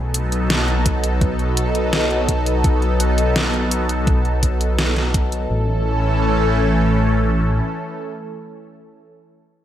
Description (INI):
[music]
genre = synthwave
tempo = 84 BPM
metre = 4/4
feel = straight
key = A major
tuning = A4 = 440 Hz
[part]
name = lush unison pad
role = sustained chords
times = 0.0-9.1 s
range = E3 to A4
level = -20 LUFS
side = equal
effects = chorus, phaser, sidechain pumping
[part]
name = dark detuned saw bass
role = bass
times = 0.0-7.6 s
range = A1 to B1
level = -20 LUFS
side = equal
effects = none
[part]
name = pop drum kit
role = drums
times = 0.1-5.5 s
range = hi-hat, snare drum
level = -22 LUFS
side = equal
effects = overdrive, gated reverb
[part]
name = electronic kick drum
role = drums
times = 0.9-5.3 s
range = none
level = -19 LUFS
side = equal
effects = overdrive
[sound]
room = moderate concert hall reverb, RT60 2.4 s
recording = none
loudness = -16 LUFS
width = side -11 dB against mid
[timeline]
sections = 0.0-5.5 A section; 5.5-8.4 B section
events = filter sweep on detuned saw bass 0.0-5.5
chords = 0.0 B7; 5.5 A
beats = 0.50 1.22 1.93 | 2.64 3.36 4.07 4.79 | 5.50 6.21 6.93 7.64